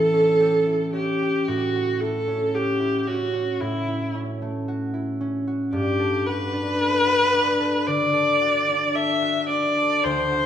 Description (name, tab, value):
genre	classical, impressionist duo for viola and harp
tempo	56 BPM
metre	4/4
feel	rubato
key	unclear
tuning	A4 = 440 Hz
part	rich viola	melody	0.0-10.5 s	E4 to E5	-21 LUFS	equal	none
part	concert harp	accompaniment	0.0-10.5 s	D2 to A4	-26 LUFS	equal	none
room	moderate recital hall reverb, RT60 1.7 s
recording	minimal, uncompressed stereo recording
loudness	-20 LUFS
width	side -9 dB against mid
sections	0.0-10.5 A section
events	none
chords	0.0 A9; 1.5 F#m7/A; 5.7 Gmaj9